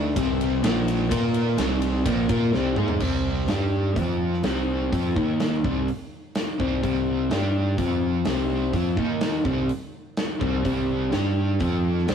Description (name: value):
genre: hard rock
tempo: 126 BPM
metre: 4/4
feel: straight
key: C minor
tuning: A4 = 440 Hz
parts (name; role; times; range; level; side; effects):
- overdriven semi-hollow guitar; riff; 0.0-12.1 s; Bb2 to Bb4; -26 LUFS; left 4 dB; none
- overdriven semi-hollow guitar; riff; 0.0-12.1 s; Bb2 to Bb4; -27 LUFS; right 5 dB; harmonic tremolo
- overdriven picked electric bass; bass; 0.0-12.1 s; Bb1 to Bb2; -28 LUFS; equal; none
- big rock drum kit; drums; 0.2-12.1 s; crash cymbal, hi-hat, kick drum, ride cymbal, snare drum, toms; -28 LUFS; equal; none
room: moderate small room ambience, RT60 0.5 s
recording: rough rehearsal-room recording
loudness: -21 LUFS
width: side -7 dB against mid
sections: 0.0-3.0 A section; 3.0-12.1 B section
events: drum fill 2.5-3.0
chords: 0.2 C5; 0.6 Bb5; 1.6 Cm; 3.0 C5; 3.5 G5; 4.0 F5; 4.4 C5; 5.2 Eb5; 5.6 C5; 7.3 G5; 7.8 F5; 8.3 C5; 9.0 Eb5; 9.5 C5; 11.1 G5; 11.6 F5